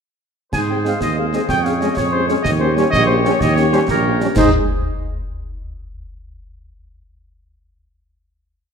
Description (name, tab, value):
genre	military-style march for wind band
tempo	125 BPM (dotted quarters)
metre	6/8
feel	straight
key	Ab major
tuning	A4 = 440 Hz
part	mellow cornet	melody	0.5-4.5 s	Bb4 to Ab5	-21 LUFS	right 1 dB	none
part	warm woodwind section	second line	0.5-4.5 s	G4 to Eb5	-23 LUFS	left 2 dB	none
part	clear tuba	bass	0.5-4.5 s	Bb1 to Ab2	-19 LUFS	right 3 dB	none
part	concert snare drum, clash cymbals and concert bass drum	drums	0.5-4.5 s	none	-24 LUFS	left 1 dB	none
part	dark French horn section	accompaniment	0.7-4.5 s	Ab3 to Ab4	-22 LUFS	left 4 dB	none
part	bright trombone section	sustained chords	0.9-4.5 s	G3 to Eb4	-24 LUFS	right 3 dB	none
room	wet recital hall reverb, RT60 1.5 s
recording	dark, warm production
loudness	-14 LUFS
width	side -6 dB against mid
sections	0.5-4.4 A section; 4.4-5.3 final chord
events	none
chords	0.5 Ab; 1.5 Db/F; 2.4 Eb7; 4.4 Ab5